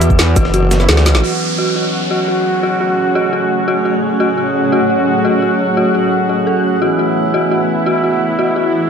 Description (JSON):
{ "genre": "dark technical drum and bass", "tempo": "172 BPM", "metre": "4/4", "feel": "straight", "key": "F# minor", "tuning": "A4 = 440 Hz", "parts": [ { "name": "metallic inharmonic drone", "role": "sustained chords", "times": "0.0-8.9 s", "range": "E3 to G#4", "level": "-19 LUFS", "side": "right 2 dB", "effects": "chorus, built-in reverb, sidechain pumping" }, { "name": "dark detuned synth bell", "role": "arpeggios", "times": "0.0-8.7 s", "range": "F#4 to A4", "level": "-18 LUFS", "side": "left 2 dB", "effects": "chorus, tremolo, sidechain pumping, dub echo" }, { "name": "clear brass ensemble", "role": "stabs", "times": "0.0-8.9 s", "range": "E3 to F#4", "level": "-18 LUFS", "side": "right 2 dB", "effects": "low-pass filter, dub echo" }, { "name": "breakbeat sampler-style drum kit", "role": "drums", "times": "0.0-1.2 s", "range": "hi-hat, snare drum", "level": "-25 LUFS", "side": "equal", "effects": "high-pass filter on hats, high-pass filter on snare" }, { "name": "drum and bass drum kit", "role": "drums", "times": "0.0-1.3 s", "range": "crash cymbal, hi-hat, shaker, snare drum", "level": "-17 LUFS", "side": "equal", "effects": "low-pass filter on hats, low-pass filter on perc, low-pass filter on snare, low-pass filter on cymbals, low-pass filter on room" }, { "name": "formant-sweep wobble bass", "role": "bass", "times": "0.4-1.2 s", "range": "F#1 to D2", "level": "-12 LUFS", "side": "equal", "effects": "chorus" }, { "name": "downlifter", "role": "sound effects", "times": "1.2-4.0 s", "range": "none", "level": "-24 LUFS", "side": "right 2 dB", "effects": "none" }, { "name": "granular cloud pad", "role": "texture", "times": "2.5-8.9 s", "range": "A3 to F#5", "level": "-19 LUFS", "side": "left 1 dB", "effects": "built-in reverb, sidechain pumping" } ], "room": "moderate digital room reverb, RT60 1.1 s", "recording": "dark, warm production", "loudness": "-12 LUFS", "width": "side -6 dB against mid", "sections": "0.0-1.2 A section; 1.2-8.9 B section", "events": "drum fill 1.0", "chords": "0.0 Esus2; 1.2 F#m; 6.8 Eadd9", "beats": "0.19 0.54 0.89 | 1.24 1.58 1.93 2.28 | 2.63 2.98 3.33 3.68 | 4.03 4.38 4.72 5.07 | 5.42 5.77 6.12 6.47 | 6.82 7.17 7.51 7.86 | 8.21 8.56" }